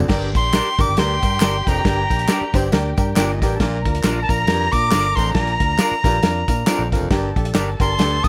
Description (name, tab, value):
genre	uptempo 1960s-style soul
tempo	137 BPM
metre	4/4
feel	swing 58% on 8ths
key	unclear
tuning	A4 = 437 Hz
part	clear grand piano	accompaniment	0.0-8.3 s	D4 to C5	-28 LUFS	equal	none
part	breathy baritone saxophone	riff	0.0-8.2 s	F2 to Bb2	-30 LUFS	equal	none
part	vintage muted fingered electric bass	bass	0.0-8.3 s	F1 to Bb2	-26 LUFS	equal	tube saturation
part	warm soul drum kit	drums	0.0-8.3 s	crash cymbal, hi-hat, kick drum, snare drum, toms	-22 LUFS	equal	none
part	warm studio violin section	second line	0.1-8.3 s	Eb4 to Bb5	-32 LUFS	equal	none
part	tambourine and handclaps	percussion	0.1-8.3 s	none	-35 LUFS	equal	none
part	bright alto recorder	melody	0.4-8.3 s	A5 to Eb6	-23 LUFS	equal	none
part	semi-hollow electric guitar	stabs	0.5-7.7 s	D4 to D5	-28 LUFS	equal	none
room	small room ambience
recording	vinyl crackle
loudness	-18 LUFS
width	mono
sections	0.1-8.3 A section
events	none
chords	0.1 Gm